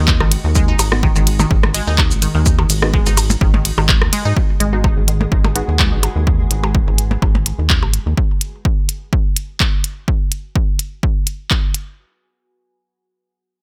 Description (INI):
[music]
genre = minimal techno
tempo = 126 BPM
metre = 4/4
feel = swing 54% on 16ths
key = G# minor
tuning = A4 = 440 Hz
[part]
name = resonant blip pluck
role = riff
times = 0.0-6.0 s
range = D#3 to D#4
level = -25 LUFS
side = equal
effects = phaser, sidechain pumping, dub echo
[part]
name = rubbery square bass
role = bass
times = 0.0-8.1 s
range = G#1 to G#2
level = -20 LUFS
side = equal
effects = sidechain pumping
[part]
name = pulsing gated texture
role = texture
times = 0.0-8.2 s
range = G#3 to G#4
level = -35 LUFS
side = equal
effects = none
[part]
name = electronic kick drum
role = drums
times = 0.1-11.6 s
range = none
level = -18 LUFS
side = equal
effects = overdrive
[part]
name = minimal click drum kit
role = drums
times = 0.1-11.8 s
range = handclaps, hi-hat, ride cymbal, shaker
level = -21 LUFS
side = equal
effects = overdrive
[part]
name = electronic rim click and percussion blips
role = percussion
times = 0.2-7.9 s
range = none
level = -24 LUFS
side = equal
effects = overdrive, delay
[part]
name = filtered dub chord stab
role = stabs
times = 0.9-5.7 s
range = G#3 to F#4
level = -28 LUFS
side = equal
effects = subtle chorus, delay
[part]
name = deep dark ambient pad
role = texture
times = 5.2-8.2 s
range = F#4 to G#5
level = -37 LUFS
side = equal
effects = chorus, built-in reverb, sidechain pumping
[sound]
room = little or no reverb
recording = none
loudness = -16 LUFS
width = mono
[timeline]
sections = 0.0-4.4 A section; 4.4-12.0 B section; 12.0-13.6 C section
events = drop 0.0-4.4; fade-out on ambient pad 4.4-8.2; filter sweep on synth pluck 4.4-6.3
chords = 0.0 G#7(no3); 4.4 G#m7; 12.0 N.C.